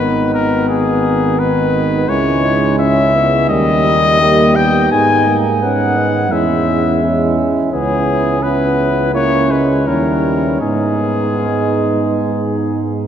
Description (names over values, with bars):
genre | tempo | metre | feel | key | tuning
classical, brass quintet | 85 BPM | 4/4 | rubato | G# minor | A4 = 439 Hz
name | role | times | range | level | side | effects
clear trumpet | melody | 0.0-12.8 s | G#4 to G#5 | -17 LUFS | left 4 dB | none
dark flugelhorn | second line | 0.0-13.1 s | C#4 to G4 | -21 LUFS | right 4 dB | none
clear euphonium | accompaniment | 0.0-13.1 s | D#3 to B3 | -21 LUFS | right 4 dB | none
mellow French horn | accompaniment | 0.0-13.1 s | A#3 to E4 | -19 LUFS | left 2 dB | none
dark bass trombone | bass | 0.0-13.1 s | G#1 to G#2 | -18 LUFS | right 2 dB | none
room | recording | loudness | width
wet cathedral reverb, RT60 5.4 s | none | -12 LUFS | side -9 dB against mid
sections
0.0-13.1 A section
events
none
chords
0.0 G#m; 2.1 C#m9; 3.5 D#7; 4.9 G#m; 6.3 C#m/E; 7.7 C#m7; 9.1 A#dim/C#; 9.9 D#7b9; 10.6 G#m